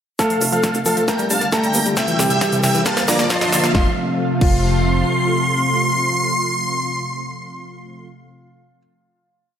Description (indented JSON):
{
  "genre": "uplifting trance",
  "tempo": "135 BPM",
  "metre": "4/4",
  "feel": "straight",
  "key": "F major",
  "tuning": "A4 = 444 Hz",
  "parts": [
    { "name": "big supersaw lead", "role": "melody", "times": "0.2-8.1 s", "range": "A4 to C6", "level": "-21 LUFS", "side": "equal", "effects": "sidechain pumping, low-pass filter, digital delay" },
    { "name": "warm grand piano", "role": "second line", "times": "0.2-8.8 s", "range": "F3 to A4", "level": "-23 LUFS", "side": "right 1 dB", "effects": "dub echo" },
    { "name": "analog pluck", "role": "arpeggios", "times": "0.2-4.5 s", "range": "C3 to D4", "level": "-25 LUFS", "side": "equal", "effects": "chorus, sidechain pumping, dub echo" },
    { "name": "big-room dance drum kit", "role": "drums", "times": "0.2-4.5 s", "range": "crash cymbal, hi-hat, snare drum", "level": "-24 LUFS", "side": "equal", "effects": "overdrive, high-pass filter on snare, high-pass filter on hats, high-pass filter on cymbals, high-pass filter on room" },
    { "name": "electronic kick drum", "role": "drums", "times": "0.2-4.5 s", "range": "none", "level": "-20 LUFS", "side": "equal", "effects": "high-pass filter on kick, high-pass filter on room" },
    { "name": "tube shaker", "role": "percussion", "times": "0.2-3.7 s", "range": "none", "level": "-27 LUFS", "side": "left 3 dB", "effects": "none" },
    { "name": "riser", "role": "sound effects", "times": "1.2-3.7 s", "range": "none", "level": "-28 LUFS", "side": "right 1 dB", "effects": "none" },
    { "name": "analog string pad", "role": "sustained chords", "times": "0.3-8.1 s", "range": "C3 to G4", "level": "-23 LUFS", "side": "equal", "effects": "ensemble chorus, sidechain pumping" },
    { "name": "plucky analog bass", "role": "bass", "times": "0.4-5.0 s", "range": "F1 to C2", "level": "-25 LUFS", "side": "equal", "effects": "sidechain pumping, high-pass filter" }
  ],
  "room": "moderate lush hall reverb, RT60 1.7 s, digital ambience",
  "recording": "none",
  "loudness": "-15 LUFS",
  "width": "side -9 dB against mid",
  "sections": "0.2-3.7 build; 3.7-7.3 final chord",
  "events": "build-up 0.2-3.7; drum fill 0.2-3.7; filter sweep on supersaw synth 0.2-3.7; riser 1.2-3.7",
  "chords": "0.2 F; 1.1 Gm; 2.0 C; 2.9 Bb; 3.7 F",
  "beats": "| 0.19 0.64 1.08 1.52 | 1.97 2.41 2.86 3.30 | 3.75 4.19 4.64 5.08 | 5.53 5.97 6.41 6.86"
}